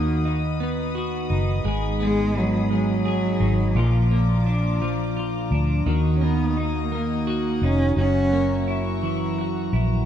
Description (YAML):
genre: six-eight pop ballad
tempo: 57 BPM (dotted quarters)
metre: 6/8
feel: straight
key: Eb minor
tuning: A4 = 439 Hz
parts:
  - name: warm cello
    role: melody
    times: 0.0-8.7 s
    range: F3 to Db4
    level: -26 LUFS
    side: equal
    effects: tape echo
  - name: twelve-string electric guitar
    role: accompaniment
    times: 0.0-10.1 s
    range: Gb2 to Ab4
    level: -24 LUFS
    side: right 1 dB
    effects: double-tracked left and right
  - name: warm studio string section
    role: sustained chords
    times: 0.0-10.1 s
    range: F4 to Eb6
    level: -33 LUFS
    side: left 3 dB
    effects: none
  - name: vintage muted fingered electric bass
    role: bass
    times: 0.0-10.1 s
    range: F1 to D#2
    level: -24 LUFS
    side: equal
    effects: none
room: light reverb, small room ambience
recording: rough home demo mix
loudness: -20 LUFS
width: side -10 dB against mid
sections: 0.0-10.1 A section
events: none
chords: 0.0 B/D#; 1.7 Abm; 3.8 Bb; 5.9 Ebm; 8.0 Gb7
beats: 0.60 | 1.65 2.71 | 3.76 4.81 | 5.87 6.92 | 7.98 9.03